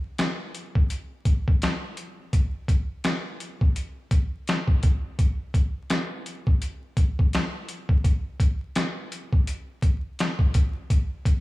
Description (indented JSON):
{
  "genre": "hip hop",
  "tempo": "84 BPM",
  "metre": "4/4",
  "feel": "swing 60% on 16ths",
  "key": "none",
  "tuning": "none",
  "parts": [
    { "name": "boom bap sampler-style drum kit", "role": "drums", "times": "0.2-11.4 s", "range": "hi-hat, kick drum, snare drum", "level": "-22 LUFS", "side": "equal", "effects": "none" }
  ],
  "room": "digital ambience",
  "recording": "vinyl crackle, small room ambience",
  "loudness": "-22 LUFS",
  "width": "side -19 dB against mid",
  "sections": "0.0-11.4 A section",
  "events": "none",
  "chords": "none",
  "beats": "0.19 0.90 1.61 | 2.33 3.04 3.76 4.47 | 5.19 5.90 6.61 7.33 | 8.04 8.76 9.47 10.19 | 10.90"
}